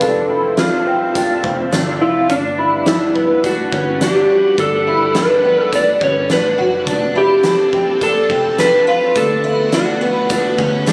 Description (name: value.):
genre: dream pop.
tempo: 105 BPM.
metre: 4/4.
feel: straight.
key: unclear.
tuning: A4 = 440 Hz.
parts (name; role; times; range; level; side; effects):
electric slide guitar; melody; 0.0-10.9 s; G3 to D5; -17 LUFS; equal; low-pass filter, digital delay.
string machine, violins; sustained chords; 0.0-10.9 s; D3 to F#5; -28 LUFS; equal; ensemble chorus, low-pass filter.
picked twelve-string acoustic guitar; arpeggios; 0.0-10.9 s; B3 to F#4; -22 LUFS; equal; ensemble chorus, low-pass filter, digital delay.
vintage muted picked electric bass; bass; 0.0-10.9 s; F1 to E2; -30 LUFS; equal; none.
oversized low-tuned drum kit; drums; 0.0-10.9 s; hi-hat, kick drum, snare drum; -24 LUFS; equal; none.
room: moderate lush hall reverb, RT60 2.5 s.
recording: recorded on a phone in the room, compression.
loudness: -15 LUFS.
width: mono.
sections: 0.0-10.9 A section.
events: none.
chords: 0.0 F6; 2.3 Gmaj7; 6.9 F6; 9.2 D6.